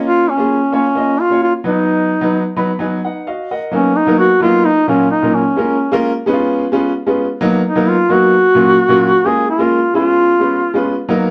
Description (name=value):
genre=soul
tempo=130 BPM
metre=4/4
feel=straight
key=unclear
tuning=A4 = 440 Hz
part: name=clear upright piano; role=accompaniment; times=0.0-11.3 s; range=Bb2 to Cb6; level=-18 LUFS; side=equal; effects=none
part: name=warm duduk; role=melody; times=0.1-10.8 s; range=Db4 to Ab4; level=-15 LUFS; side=equal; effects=plate reverb
room=wet studio reverb, RT60 0.8 s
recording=none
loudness=-14 LUFS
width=mono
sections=0.0-3.7 A section; 3.7-11.3 B section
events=upright piano fill 2.4-3.7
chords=0.0 Bbm; 1.7 Cb; 3.7 Cbmaj7; 4.7 Gbmaj7/Bb; 5.6 Bbm7; 6.3 Db7; 7.4 Cbmaj7; 8.3 Gbmaj7/Bb; 9.3 Bbm7; 9.9 Db7